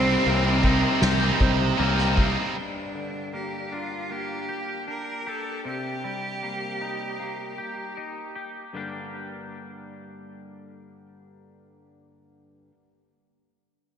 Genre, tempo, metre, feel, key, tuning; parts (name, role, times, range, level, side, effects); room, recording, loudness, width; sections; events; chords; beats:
post-rock; 78 BPM; 4/4; straight; G minor; A4 = 440 Hz
bright cello; melody; 0.0-7.9 s; Bb3 to Bb4; -30 LUFS; right 1 dB; tape echo
felt-muted upright piano; arpeggios; 0.0-2.2 s; Bb4 to C5; -37 LUFS; right 1 dB
twangy electric guitar; arpeggios; 0.0-12.7 s; G2 to G4; -33 LUFS; left 3 dB; analog chorus, tape echo
tight distorted guitar; riff; 0.0-2.5 s; C3 to Eb4; -30 LUFS; left 11 dB; distortion
tight distorted guitar; riff; 0.0-2.5 s; C3 to Eb4; -27 LUFS; right 9 dB; distortion
fuzz fingered electric bass; bass; 0.0-2.4 s; C2; -24 LUFS; equal; overdrive
soft-mallet drum kit; drums; 0.3-2.4 s; crash cymbal, kick drum, snare drum; -26 LUFS; equal
wet lush hall reverb, RT60 2.9 s; dreamy mix soaked in reverb, nothing above 10.3 kHz; -24 LUFS; side -8 dB against mid
0.0-2.6 A section; 2.6-8.7 B section; 8.7-11.8 C section
0.0 Cm7; 2.6 Gm; 5.6 Cm7; 8.7 Gm
0.26 1.02 1.79 | 2.56 3.33 4.10 4.87 | 5.64 6.42 7.19 7.96 | 8.74 9.51 10.29 11.06